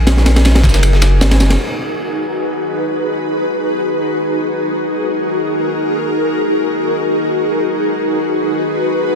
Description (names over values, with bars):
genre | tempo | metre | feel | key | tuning
drum and bass, jungle | free time | none | none | G# minor | A4 = 441 Hz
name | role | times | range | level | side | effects
ethereal airy pad | sustained chords | 0.0-9.2 s | D#4 to B4 | -16 LUFS | left 1 dB | ensemble chorus, built-in reverb, tremolo
saturated sub bass | bass | 0.0-1.6 s | F#1 to A#1 | -11 LUFS | equal | none
drifting glass-harmonics texture | texture | 0.0-1.6 s | G#5 | -33 LUFS | right 1 dB | none
crunchy breakbeat drum kit | drums | 0.1-1.6 s | kick drum, ride cymbal, snare drum | -16 LUFS | equal | none
dusty soul sampler-style drum kit | drums | 0.1-1.5 s | hi-hat, snare drum, tambourine | -22 LUFS | equal | high-pass filter on perc, high-pass filter on snare, high-pass filter on hats
room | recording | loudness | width
moderate lush hall reverb, RT60 2.0 s | dense, heavily limited modern master | -13 LUFS | side -6 dB against mid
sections
0.0-1.6 A section; 1.6-9.2 B section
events
drop 0.0-1.6; kick drops out 0.8-1.6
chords
0.0 G#7(no3); 1.6 G#m7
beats
free time